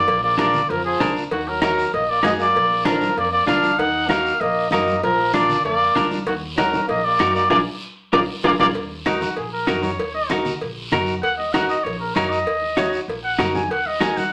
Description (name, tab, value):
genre	latin, cumbia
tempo	194 BPM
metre	4/4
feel	straight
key	Eb minor from 8.8 s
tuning	A4 = 442 Hz
part	warm trumpet	melody	0.0-14.3 s	Eb4 to Ab5	-22 LUFS	equal	none
part	clear trombone	second line	0.0-8.7 s	Eb3 to Eb4	-29 LUFS	equal	none
part	upright bass	bass	0.1-14.2 s	Bb1 to Gb2	-35 LUFS	equal	none
part	cowbell and timbales	percussion	0.1-14.2 s	none	-31 LUFS	equal	none
part	guiro	percussion	0.1-14.3 s	none	-38 LUFS	equal	none
part	congas	percussion	0.2-14.3 s	none	-31 LUFS	equal	none
part	clean electric guitar	accompaniment	0.4-14.2 s	D4 to Db5	-24 LUFS	equal	none
room	wet studio reverb, RT60 0.6 s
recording	none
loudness	-20 LUFS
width	mono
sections	0.0-8.8 A section; 8.8-14.3 B section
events	band accent 7.5-8.8; drum fill 8.3-8.8; trumpet solo 8.8-14.3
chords	0.1 Bb7; 1.3 Ebm; 2.6 Bb; 3.8 Ebm; 5.0 Bb; 6.3 Ebm; 7.5 Bb7(no3); 8.8 Ebm